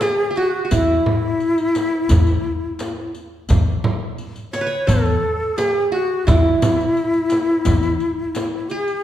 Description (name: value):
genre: Arabic maqam ensemble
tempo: 86 BPM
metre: 4/4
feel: straight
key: E maqam rast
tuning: A4 = 441 Hz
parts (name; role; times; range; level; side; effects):
- breathy ney; melody; 0.0-9.0 s; E4 to C#5; -20 LUFS; left 2 dB; none
- qanun; second line; 0.0-9.0 s; E4 to C#5; -23 LUFS; right 3 dB; none
- frame drum; percussion; 0.0-8.5 s; none; -23 LUFS; right 1 dB; none
- riq; percussion; 0.0-9.0 s; none; -32 LUFS; left 3 dB; none
- upright bass; bass; 0.7-7.9 s; E2; -19 LUFS; equal; none
room: wet recital hall reverb, RT60 1.4 s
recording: recorded in a church or concert hall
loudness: -16 LUFS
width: side -12 dB against mid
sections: 0.0-9.0 A section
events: none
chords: none